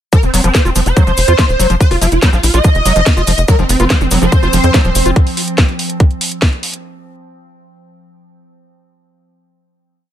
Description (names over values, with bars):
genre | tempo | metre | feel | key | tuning
psychedelic trance | 143 BPM | 4/4 | straight | unclear | A4 = 440 Hz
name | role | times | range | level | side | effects
swarming rave lead | melody | 0.1-5.1 s | C4 to Eb5 | -16 LUFS | right 1 dB | chorus, phaser, sidechain pumping, tape echo
overdriven acid bass | riff | 0.1-5.1 s | F3 to F4 | -20 LUFS | moving between left 4 dB and right 4 dB | distortion, auto-pan, sidechain pumping, tape echo
electronic kick drum | drums | 0.1-6.5 s | none | -11 LUFS | equal | none
garage drum kit | drums | 0.1-6.8 s | hi-hat, snare drum | -18 LUFS | equal | none
cabasa | percussion | 0.1-5.1 s | none | -24 LUFS | left 4 dB | none
tight sequencer bass | bass | 0.2-5.1 s | Eb1 to F2 | -14 LUFS | equal | none
evolving wavetable pad | sustained chords | 3.8-5.2 s | F3 to C4 | -21 LUFS | right 2 dB | chorus, built-in reverb, sidechain pumping
room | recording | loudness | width
little or no reverb | none | -10 LUFS | side -11 dB against mid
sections
0.1-6.8 groove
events
none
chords
0.1 F5